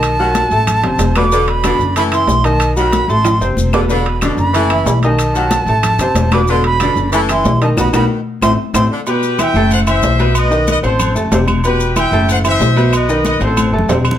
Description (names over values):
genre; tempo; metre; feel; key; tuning
latin, salsa; 186 BPM; 4/4; straight; unclear; A4 = 436 Hz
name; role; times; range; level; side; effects
bright silver concert flute; melody; 0.0-8.8 s; A5 to D6; -17 LUFS; right 2 dB; none
bright baby grand piano; accompaniment; 0.0-14.2 s; A2 to C6; -17 LUFS; equal; none
upright bass; bass; 0.0-14.2 s; E1 to B1; -16 LUFS; equal; none
claves; percussion; 0.0-14.2 s; none; -27 LUFS; left 6 dB; none
congas; percussion; 0.0-14.2 s; none; -22 LUFS; left 4 dB; none
maracas; percussion; 0.0-14.2 s; none; -29 LUFS; left 6 dB; none
timbales and agogo bells; percussion; 0.0-14.2 s; none; -22 LUFS; right 4 dB; none
clear saxophone section; second line; 0.2-9.0 s; B2 to E3; -20 LUFS; left 3 dB; none
bright trumpet section; melody; 9.1-13.7 s; G4 to G5; -17 LUFS; left 2 dB; none
room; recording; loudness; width
moderate large studio reverb, RT60 0.9 s; none; -11 LUFS; side -10 dB against mid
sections
0.0-9.1 A section; 9.1-14.2 B section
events
drum fill 3.3-3.9, 13.6-14.2; band accent 7.8-9.1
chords
0.0 B7; 0.7 Am; 1.3 E5; 2.0 F#m7b5; 2.6 B7; 3.3 Am; 3.9 E5; 4.5 Badd11/F#; 5.2 B7; 5.8 Am; 6.5 E5; 7.1 F#m7b5; 7.8 B; 8.4 Am; 9.1 Em; 10.3 B7; 11.0 Am; 11.6 Em; 12.3 F#m7b5; 12.9 B7; 13.6 Am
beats
| 0.03 0.35 0.67 0.99 | 1.32 1.64 1.96 2.28 | 2.61 2.93 3.25 3.57 | 3.90 4.22 4.54 4.87 | 5.19 5.51 5.83 6.16 | 6.48 6.80 7.12 7.45 | 7.77 8.09 8.42 8.74 | 9.06 9.38 9.71 10.03 | 10.35 10.67 10.99 11.32 | 11.64 11.96 12.28 12.61 | 12.93 13.25 13.57 13.89